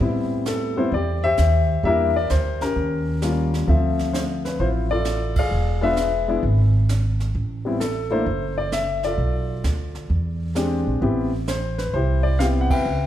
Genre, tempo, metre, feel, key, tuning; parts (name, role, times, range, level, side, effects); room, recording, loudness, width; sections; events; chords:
jazz piano trio; 131 BPM; 4/4; swing 67% on 8ths; A minor; A4 = 445 Hz
warm grand piano; melody; 0.0-13.1 s; F3 to G5; -22 LUFS; left 2 dB
upright bass; bass; 0.0-13.1 s; E1 to A2; -22 LUFS; right 1 dB
jazz brush drum kit; drums; 0.0-13.1 s; brushed snare drum, hi-hat, kick drum, ride cymbal, snare drum; -30 LUFS; right 3 dB
moderate scoring stage reverb, RT60 1.6 s; recorded in a church or concert hall; -19 LUFS; side -12 dB against mid
0.0-13.1 A section
band accent 5.3, 12.6
0.0 Am7; 1.8 Em7b5; 2.8 D#9; 3.7 Dm9; 5.5 E7b9; 7.4 Am; 8.3 F#m7b5; 9.2 Bm7b5; 10.1 E7alt; 11.0 Am7